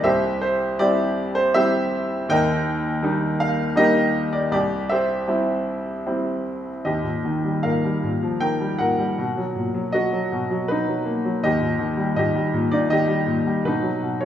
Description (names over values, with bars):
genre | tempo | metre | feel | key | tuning
classical, lyrical solo piano | 79 BPM | 3/4 | uneven beats, rubato | Eb major | A4 = 440 Hz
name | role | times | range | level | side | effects
bright grand piano | solo | 0.0-14.2 s | C2 to G5 | -20 LUFS | equal | none
room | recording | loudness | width
light reverb | studio ambience | -20 LUFS | side -10 dB against mid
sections
0.0-6.9 A section; 6.9-14.2 B section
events
none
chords
0.0 C; 2.3 Eb; 4.5 C; 6.9 Ebadd9; 9.2 Bmaj7; 11.4 Ebadd9; 13.7 B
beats
| 0.04 0.80 1.55 | 2.30 3.04 3.77 | 4.52 5.29 6.07 | 6.86 7.64 8.42 | 9.18 9.95 10.70 | 11.44 12.18 12.91 | 13.66